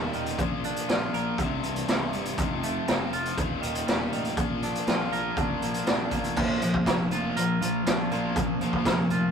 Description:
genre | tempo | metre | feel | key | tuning
quiet-loud alternative rock | 120 BPM | 4/4 | straight | unclear | A4 = 440 Hz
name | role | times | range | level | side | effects
twangy electric guitar | arpeggios | 0.0-9.3 s | C2 to Bb4 | -32 LUFS | right 4 dB | none
scooped high-gain guitar | riff | 0.0-9.3 s | C2 to Bb3 | -31 LUFS | left 6 dB | distortion
fuzz fingered electric bass | bass | 0.0-9.3 s | C1 to Bb1 | -36 LUFS | equal | overdrive
raw garage drum kit | drums | 0.1-9.2 s | crash cymbal, hi-hat, kick drum, snare drum | -28 LUFS | equal | none
thick fuzz guitar | riff | 6.4-9.3 s | Bb2 to Bb3 | -28 LUFS | right 3 dB | distortion
room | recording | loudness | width
light reverb | rough rehearsal-room recording | -24 LUFS | side -6 dB against mid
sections
0.0-6.4 A section; 6.4-9.3 B section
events
none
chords
0.4 Bb; 1.4 C5; 2.4 F; 3.4 Eb; 4.4 Bb

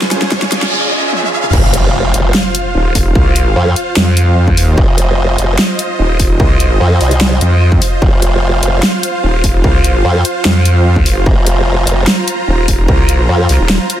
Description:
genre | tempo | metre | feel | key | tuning
heavy wobble dubstep | 148 BPM | 4/4 | half-time | F minor | A4 = 444 Hz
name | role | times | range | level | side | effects
supersaw chords | sustained chords | 0.0-14.0 s | Db3 to Bb5 | -17 LUFS | right 1 dB | vintage 12-bit sampler grit, sidechain pumping
dubstep drum kit | drums | 0.0-14.0 s | crash cymbal, handclaps, hi-hat, snare drum, toms | -15 LUFS | equal | none
riser, noise sweep and impact | sound effects | 0.0-3.2 s | none | -17 LUFS | equal | none
deep dark ambient pad | texture | 0.0-0.7 s | F4 to Ab5 | -31 LUFS | right 3 dB | none
electronic kick drum | drums | 0.3-13.0 s | none | -13 LUFS | equal | distortion
formant-sweep wobble bass | bass | 1.5-13.5 s | F1 to F2 | -12 LUFS | equal | chorus, overdrive
vowel-sweep wobble bass | bass | 2.7-13.8 s | Eb1 to F2 | -11 LUFS | equal | chorus, overdrive
room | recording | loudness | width
little or no reverb | dense, heavily limited modern master, high-pass filter | -9 LUFS | side -11 dB against mid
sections
0.0-1.5 A section; 1.5-14.0 B section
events
build-up 0.0-1.5; drum fill 0.0-0.7, 1.1-1.5; riser 0.0-1.5; noise sweep 0.0-1.5; drop 1.5-14.0; impact 1.5-3.2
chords
0.0 Db; 1.5 F5

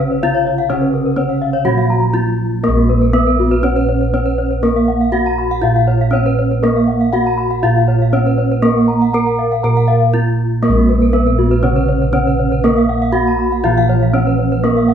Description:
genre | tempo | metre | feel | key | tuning
Balinese gamelan | 120 BPM | 4/4 | straight | Bb pelog | A4 = 439 Hz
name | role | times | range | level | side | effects
gamelan-type bronze metallophone | melody | 0.0-14.9 s | Bb3 to Bb4 | -17 LUFS | right 2 dB | none
gamelan-type bronze metallophone | accompaniment | 0.0-2.6, 10.6-14.9 s | Db3-30c to Bb3 | -21 LUFS | right 3 dB | none
gamelan-type bronze metallophone | arpeggios | 0.0-14.9 s | Gb4-20c to Cb6+20c | -19 LUFS | left 6 dB | none
gamelan-type bossed gongs | bass | 0.0-14.9 s | Bb1 to Bb4 | -16 LUFS | right 1 dB | none
gamelan-type bronze metallophone | arpeggios | 0.3-14.9 s | Gb4-20c to Bb5 | -24 LUFS | right 6 dB | none
room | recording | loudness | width
wet large studio reverb, RT60 1.1 s | band playing live in one room | -12 LUFS | side -8 dB against mid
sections
0.0-2.6 A section; 2.6-14.9 B section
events
none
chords
none

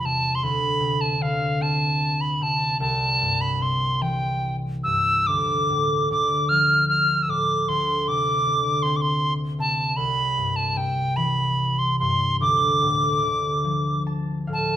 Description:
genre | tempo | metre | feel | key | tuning
celtic folk, Celtic slow air | 47-53 BPM (dotted quarters) | 6/8 | rubato | D dorian | A4 = 440 Hz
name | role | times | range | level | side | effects
reedy tin whistle | melody | 0.0-14.8 s | F5 to F6 | -22 LUFS | equal | none
concert harp | accompaniment | 0.0-14.8 s | C2 to A5 | -25 LUFS | left 1 dB | none
room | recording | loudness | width
moderate recital hall reverb, RT60 1.4 s | minimal, uncompressed stereo recording | -20 LUFS | side -11 dB against mid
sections
0.0-14.8 A section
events
harp fill 13.6-14.8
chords
0.4 D7(no3); 2.8 C; 5.3 Dm; 7.7 Amadd11/D (rootless); 10.0 C; 12.4 Dm

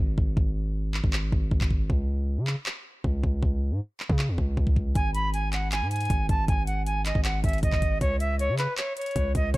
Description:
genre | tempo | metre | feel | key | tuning
hip hop, trap | 157 BPM | 4/4 | half-time | G# minor | A4 = 438 Hz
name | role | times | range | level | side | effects
distorted 808-style bass | bass | 0.0-9.6 s | G#1 to C#3 | -27 LUFS | equal | distortion
trap drum kit | drums | 0.2-9.6 s | handclaps, hi-hat, kick drum | -26 LUFS | equal | none
bright reedy concert flute | melody | 5.0-9.6 s | B4 to B5 | -29 LUFS | right 1 dB | ping-pong delay
room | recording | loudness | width
little or no reverb | dark, warm production | -24 LUFS | side -19 dB against mid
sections
0.0-9.6 A section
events
break 0.0-5.0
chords
0.0 N.C.; 5.0 G#5; 8.0 N.C.

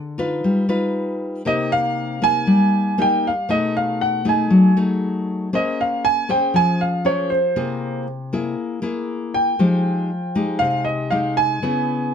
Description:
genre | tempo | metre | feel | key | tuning
bossa nova | 118 BPM | 4/4 | straight | unclear | A4 = 444 Hz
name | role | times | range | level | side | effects
nylon-string guitar | accompaniment | 0.0-12.1 s | B2 to C5 | -20 LUFS | left 2 dB | none
warm concert grand piano | melody | 1.5-12.1 s | C5 to Ab5 | -20 LUFS | right 2 dB | none
room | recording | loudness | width
light reverb | close, detailed microphones | -17 LUFS | side -8 dB against mid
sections
0.0-12.1 A section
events
none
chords
0.4 Gaug7; 1.5 Cm7; 3.5 B6; 5.5 Bbm9; 7.6 C7b13; 9.6 Fm9; 11.6 Dbm7

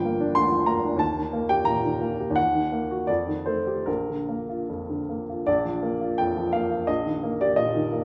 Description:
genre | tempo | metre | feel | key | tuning
classical, romantic character piece for solo piano | 72-95 BPM | 2/4 | rubato | Bb major | A4 = 440 Hz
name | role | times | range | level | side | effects
warm upright piano | solo | 0.0-8.0 s | G1 to C6 | -25 LUFS | equal | none
room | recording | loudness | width
wet recital hall reverb, RT60 1.8 s | none | -25 LUFS | mono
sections
0.0-5.5 A section; 5.5-8.0 A section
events
none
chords
0.0 Gm7; 1.0 Eb; 2.4 Ebm; 3.1 F9; 3.9 Bb; 6.9 Eb/Bb

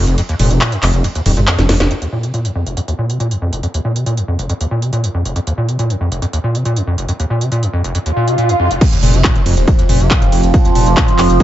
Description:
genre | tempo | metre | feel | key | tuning
driving peak-time techno | 139 BPM | 4/4 | straight | unclear | A4 = 440 Hz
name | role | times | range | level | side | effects
overdriven acid bass | riff | 0.0-11.4 s | F1 to C3 | -16 LUFS | equal | wide subtle chorus, sidechain pumping, dub echo
detuned saw bass | bass | 0.0-1.9, 9.0-11.4 s | Eb1 to G1 | -14 LUFS | equal | sidechain pumping
techno drum kit | drums | 0.1-11.4 s | crash cymbal, handclaps, hi-hat, ride cymbal, snare drum | -20 LUFS | right 1 dB | sidechain pumping on hats, sidechain pumping on cymbals
swell and impact | sound effects | 8.1-10.5 s | none | -19 LUFS | equal | none
overtone-sweeping drone | drone | 9.4-11.4 s | F3 to C4 | -17 LUFS | right 3 dB | chorus, built-in reverb, sidechain pumping
electronic kick drum | drums | 8.8-11.4 s | none | -12 LUFS | equal | none
room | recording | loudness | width
light reverb | echo-heavy mix, nothing above 7.8 kHz | -12 LUFS | side -12 dB against mid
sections
0.0-1.9 A section; 1.9-8.8 B section; 8.8-11.4 A section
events
drop 0.0-1.9, 8.8-11.4; kick drops out 0.2-1.9; drum fill 1.6-1.9; band accent 1.8; filter sweep on acid bass 1.9-8.8; swell 8.1-8.8; impact 8.8-10.5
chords
0.0 N.C.; 1.9 F5

